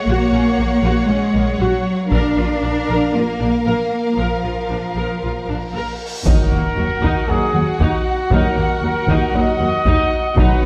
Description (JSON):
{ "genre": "cinematic, epic orchestral film score", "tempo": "117 BPM", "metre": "4/4", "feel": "straight", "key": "Eb minor", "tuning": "A4 = 444 Hz", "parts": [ { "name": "warm symphonic violin section", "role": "melody", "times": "0.0-10.7 s", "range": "F5 to Gb5", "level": "-31 LUFS", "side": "equal", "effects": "none" }, { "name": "warm symphonic violin section", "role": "second line", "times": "0.0-10.7 s", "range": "Gb4 to Db5", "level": "-28 LUFS", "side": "equal", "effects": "none" }, { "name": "rich symphonic cello section", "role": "bass", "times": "0.0-10.7 s", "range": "Eb2 to D4", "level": "-23 LUFS", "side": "equal", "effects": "none" }, { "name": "clear symphonic viola section", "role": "accompaniment", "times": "0.1-10.7 s", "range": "Gb3 to Bb4", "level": "-27 LUFS", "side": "equal", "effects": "none" }, { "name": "rich symphonic double bass section", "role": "bass", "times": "0.1-10.7 s", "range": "Bb1 to Eb2", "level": "-24 LUFS", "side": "equal", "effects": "none" }, { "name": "taiko ensemble", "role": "drums", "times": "2.1-3.1, 6.3-10.7 s", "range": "none", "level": "-21 LUFS", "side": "equal", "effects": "none" }, { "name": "cymbal swell and impact", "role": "sound effects", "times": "5.8-8.3 s", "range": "none", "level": "-29 LUFS", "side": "equal", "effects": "none" }, { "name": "warm French horn section", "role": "sustained chords", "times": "6.3-10.5 s", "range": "F#3 to Eb4", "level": "-29 LUFS", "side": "equal", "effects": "none" }, { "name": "clear trumpet section", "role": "stabs", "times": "6.3-10.7 s", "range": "Gb4 to Eb5", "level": "-24 LUFS", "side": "equal", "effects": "none" } ], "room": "moderate scoring stage reverb, RT60 1.9 s", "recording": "dark, warm production", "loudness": "-18 LUFS", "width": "mono", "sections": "0.0-6.3 A section; 6.3-10.7 A section", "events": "cymbal swell 5.8-6.3; impact 6.3-8.3", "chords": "0.0 Gb/Bb; 2.1 Bb; 6.3 Ebm" }